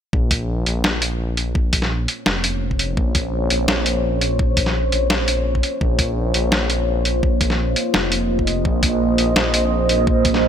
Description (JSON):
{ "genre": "half-time drum and bass", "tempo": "169 BPM", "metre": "4/4", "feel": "half-time", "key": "Bb minor", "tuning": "A4 = 440 Hz", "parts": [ { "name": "deep dark ambient pad", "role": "sustained chords", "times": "1.9-10.5 s", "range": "Bb3 to Eb5", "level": "-21 LUFS", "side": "right 1 dB", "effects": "chorus, built-in reverb, sidechain pumping" }, { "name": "dark detuned saw bass", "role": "bass", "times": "0.1-10.5 s", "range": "F1 to Bb1", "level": "-22 LUFS", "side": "equal", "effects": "tube saturation" }, { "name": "electronic kick drum", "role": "drums", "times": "0.1-10.3 s", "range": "none", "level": "-20 LUFS", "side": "equal", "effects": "none" }, { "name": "boom bap sampler-style drum kit", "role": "drums", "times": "0.3-10.4 s", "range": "hi-hat, snare drum", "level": "-20 LUFS", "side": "equal", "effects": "none" } ], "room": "light reverb", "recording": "none", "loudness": "-17 LUFS", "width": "side -8 dB against mid", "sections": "0.1-10.5 A section", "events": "none", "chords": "0.1 Bbmadd9" }